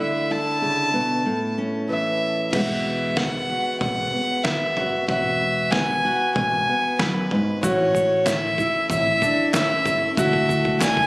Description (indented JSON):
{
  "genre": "indie folk with a building arrangement",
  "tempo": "94 BPM",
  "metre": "4/4",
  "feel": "straight",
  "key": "unclear",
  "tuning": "A4 = 440 Hz",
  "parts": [
    { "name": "warm fiddle", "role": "melody", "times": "0.0-11.1 s", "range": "B4 to A5", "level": "-22 LUFS", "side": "equal", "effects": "none" },
    { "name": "fingerpicked steel-string acoustic guitar", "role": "accompaniment", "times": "0.0-7.6 s", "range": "E2 to F#4", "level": "-25 LUFS", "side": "equal", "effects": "none" },
    { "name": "fingered electric bass", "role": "bass", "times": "2.5-11.1 s", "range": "E1 to D2", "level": "-28 LUFS", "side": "equal", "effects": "none" },
    { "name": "trip hop sampler-style drum kit", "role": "drums", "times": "2.5-11.1 s", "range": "crash cymbal, kick drum, snare drum, toms", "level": "-26 LUFS", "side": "equal", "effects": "none" },
    { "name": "picked twelve-string acoustic guitar", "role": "accompaniment", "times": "7.6-11.1 s", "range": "A2 to E4", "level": "-27 LUFS", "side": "left 2 dB", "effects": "none" },
    { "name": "bright upright piano", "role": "arpeggios", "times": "7.6-10.8 s", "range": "D4 to F#4", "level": "-26 LUFS", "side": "right 1 dB", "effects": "none" },
    { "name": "tube shaker", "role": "percussion", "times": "7.6-11.0 s", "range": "none", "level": "-37 LUFS", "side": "equal", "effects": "none" },
    { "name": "group handclap", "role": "percussion", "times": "8.3-11.0 s", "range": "none", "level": "-31 LUFS", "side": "equal", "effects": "none" }
  ],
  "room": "light reverb, small room ambience",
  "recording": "recorded on a phone in the room, club reverb",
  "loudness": "-19 LUFS",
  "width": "side -22 dB against mid",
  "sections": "0.0-2.5 A section; 2.5-11.1 B section",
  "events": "build-up 2.5-11.1; drum fill 2.5-11.1",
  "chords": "0.0 Dsus2; 1.3 A; 2.5 Eadd9; 7.6 A; 10.2 Dsus2",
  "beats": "0.62 1.26 1.90 | 2.54 3.18 3.82 4.45 | 5.09 5.73 6.37 7.00 | 7.64 8.28 8.91 9.55 | 10.18 10.81"
}